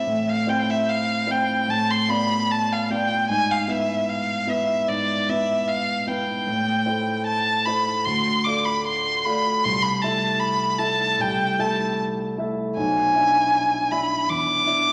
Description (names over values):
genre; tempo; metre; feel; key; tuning
classical, romantic duo for violin and grand piano; 76 BPM; 4/4; rubato; A minor; A4 = 440 Hz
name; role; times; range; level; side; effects
clear violin; melody; 0.0-14.9 s; D5 to D6; -24 LUFS; equal; none
dark baby grand piano; accompaniment; 0.0-14.9 s; B1 to E5; -28 LUFS; equal; none
room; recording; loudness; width
wet recital hall reverb, RT60 1.8 s; none; -22 LUFS; mono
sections
0.1-14.9 A section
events
none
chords
0.1 Am; 1.7 Bm7b5/A; 3.3 E/G#; 6.5 Am; 8.0 Dm; 9.6 Am/C; 12.8 E7/B